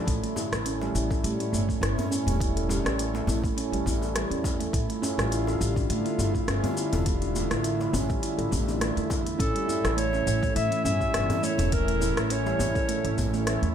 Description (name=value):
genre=organic downtempo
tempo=103 BPM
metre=4/4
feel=swing 54% on 16ths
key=unclear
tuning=A4 = 440 Hz
part: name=airy breathy pad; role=sustained chords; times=0.0-13.7 s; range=A2 to F4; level=-32 LUFS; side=equal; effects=chorus, sidechain pumping
part: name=handpan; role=arpeggios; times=0.0-13.7 s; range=G3 to A4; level=-30 LUFS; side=right 2 dB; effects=digital delay
part: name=upright bass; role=bass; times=0.0-13.7 s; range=E1 to A2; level=-29 LUFS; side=equal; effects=none
part: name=electronic kick drum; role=drums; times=0.1-13.3 s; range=none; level=-30 LUFS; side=equal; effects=none
part: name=organic electronic drum kit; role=drums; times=0.1-13.7 s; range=hi-hat, rim click, shaker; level=-33 LUFS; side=left 1 dB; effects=none
part: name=djembe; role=percussion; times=0.4-13.4 s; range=none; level=-36 LUFS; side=left 4 dB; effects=none
part: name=warm clarinet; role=melody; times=9.4-13.5 s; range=A4 to E5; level=-29 LUFS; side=left 1 dB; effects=ping-pong delay
room=light reverb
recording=none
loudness=-24 LUFS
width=side -9 dB against mid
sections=0.1-13.7 A section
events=none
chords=0.1 A; 4.7 Dmadd9; 9.4 A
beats=| 0.07 0.66 1.24 1.82 | 2.40 2.99 3.57 4.15 | 4.73 5.32 5.90 6.48 | 7.06 7.65 8.23 8.81 | 9.39 9.98 10.56 11.14 | 11.72 12.31 12.89 13.47